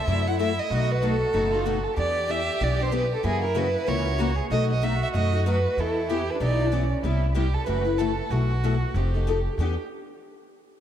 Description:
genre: acoustic string swing (jazz manouche)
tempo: 189 BPM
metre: 4/4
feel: swing 60% on 8ths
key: E minor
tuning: A4 = 441 Hz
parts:
  - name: warm violin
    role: melody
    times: 0.0-6.9 s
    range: G4 to F#5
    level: -27 LUFS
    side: right 1 dB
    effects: analog delay
  - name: warm violin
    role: second line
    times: 0.0-9.8 s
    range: C#4 to B4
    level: -32 LUFS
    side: right 5 dB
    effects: none
  - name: picked steel-string acoustic guitar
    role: accompaniment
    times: 0.1-9.7 s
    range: B2 to A4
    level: -29 LUFS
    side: left 5 dB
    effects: ensemble chorus
  - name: upright bass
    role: bass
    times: 0.1-9.8 s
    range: F1 to F#2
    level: -25 LUFS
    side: equal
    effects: none
room: moderate plate reverb, RT60 2.9 s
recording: dreamy mix soaked in reverb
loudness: -22 LUFS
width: side -10 dB against mid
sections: 0.0-7.0 A section; 7.0-9.6 B section; 9.6-10.8 C section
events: none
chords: 0.0 F#m7b5; 0.7 B7; 2.0 Em7; 3.2 F#7; 4.5 B7; 5.8 Em; 7.0 Cmaj7; 7.7 F#m7b5; 8.3 B7sus4; 8.9 F9; 9.6 Em7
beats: 0.07 0.39 | 0.70 1.02 1.34 1.65 | 1.97 2.29 2.60 2.92 | 3.24 3.56 3.87 4.19 | 4.51 4.82 5.14 5.46 | 5.78 6.09 6.41 6.73 | 7.04 7.36 7.68 8.00 | 8.31 8.63 8.95 9.27 | 9.58

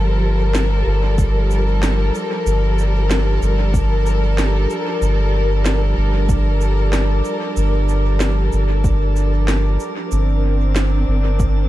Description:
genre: ambient dub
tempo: 94 BPM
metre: 4/4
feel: swing 54% on 16ths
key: G minor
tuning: A4 = 440 Hz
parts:
  - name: warm studio string section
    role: sustained chords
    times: 0.0-11.7 s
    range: F3 to Bb4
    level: -22 LUFS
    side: left 2 dB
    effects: none
  - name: soft dub sub bass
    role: bass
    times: 0.0-11.7 s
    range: G1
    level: -16 LUFS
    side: equal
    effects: none
  - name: drifting glass-harmonics texture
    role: texture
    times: 0.4-11.7 s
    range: D4 to D5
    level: -28 LUFS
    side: right 6 dB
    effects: chorus, built-in reverb
  - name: electronic snare drum and shaker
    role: drums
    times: 0.5-11.5 s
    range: none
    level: -25 LUFS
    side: equal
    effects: dub echo
  - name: electronic kick drum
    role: drums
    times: 1.2-11.5 s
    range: none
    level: -20 LUFS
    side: equal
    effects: none
room: digital ambience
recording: dark, warm production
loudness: -15 LUFS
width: side -15 dB against mid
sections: 0.0-11.7 A section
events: none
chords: 0.0 Gm9; 10.1 Bbadd9/G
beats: 0.55 1.18 1.82 | 2.46 3.10 3.74 4.38 | 5.01 5.65 6.29 6.93 | 7.57 8.21 8.84 9.48 | 10.12 10.76 11.40

